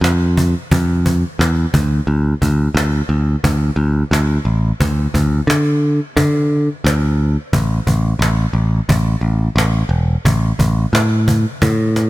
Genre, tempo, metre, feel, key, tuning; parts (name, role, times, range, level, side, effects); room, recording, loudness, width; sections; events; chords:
hard rock; 88 BPM; 4/4; straight; D minor; A4 = 440 Hz
picked electric bass; bass; 0.0-12.1 s; E1 to D3; -14 LUFS; equal
cajon; drums; 0.0-12.1 s; -20 LUFS; equal
small room ambience; bright 1980s-style digital production; -13 LUFS; side -18 dB against mid
0.0-12.1 A section
drum fill 11.6-12.1